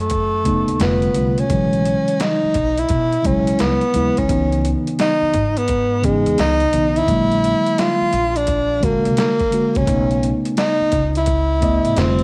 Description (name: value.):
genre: hip hop, jazz-hop.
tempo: 86 BPM.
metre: 4/4.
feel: swing 66% on 16ths.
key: unclear.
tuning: A4 = 437 Hz.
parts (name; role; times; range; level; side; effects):
breathy tenor saxophone; melody; 0.0-12.2 s; G#3 to E#4; -21 LUFS; equal; none.
upright bass; bass; 0.0-12.2 s; F1 to B2; -25 LUFS; equal; none.
dusty soul sampler-style drum kit; drums; 0.1-12.2 s; hi-hat, kick drum, snare drum; -27 LUFS; equal; overdrive.
mellow tine electric piano; accompaniment; 0.4-12.2 s; C#3 to D#5; -23 LUFS; equal; none.
room: light reverb, small room reverb.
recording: vinyl crackle.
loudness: -18 LUFS.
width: mono.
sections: 0.0-12.2 A section.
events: none.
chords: 0.0 B9; 0.8 F69; 1.5 E69/B; 4.3 C#m9; 7.1 A#7b13; 9.9 B9.